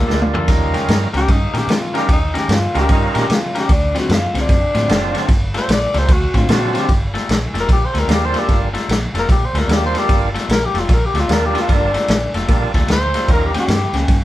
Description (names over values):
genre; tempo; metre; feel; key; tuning
electric blues shuffle; 150 BPM; 4/4; swing 64% on 8ths; G minor; A4 = 440 Hz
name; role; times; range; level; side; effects
growling tenor saxophone; melody; 0.0-14.0 s; Bb3 to D5; -21 LUFS; left 2 dB; none
electric guitar at the edge of break-up; riff; 0.0-14.2 s; D3 to Bb4; -24 LUFS; left 3 dB; none
vintage muted fingered electric bass; bass; 0.0-14.2 s; F1 to C3; -21 LUFS; equal; none
overdriven tonewheel organ; accompaniment; 0.1-13.5 s; F#3 to Bb4; -22 LUFS; right 3 dB; slow rotary speaker
vintage drum kit; drums; 0.1-14.2 s; kick drum, ride cymbal, snare drum, splash cymbal, toms; -17 LUFS; equal; none
room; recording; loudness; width
moderate small room reverb, RT60 0.5 s; band playing live in one room; -14 LUFS; side -15 dB against mid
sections
0.0-6.9 A section; 6.9-14.2 A section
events
tenor saxophone solo 0.0-14.2; drum fill 0.1-0.5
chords
0.5 Eb7; 3.7 D7#9; 5.3 Gm9; 6.1 D7#9; 6.9 Gm9; 13.3 Eb7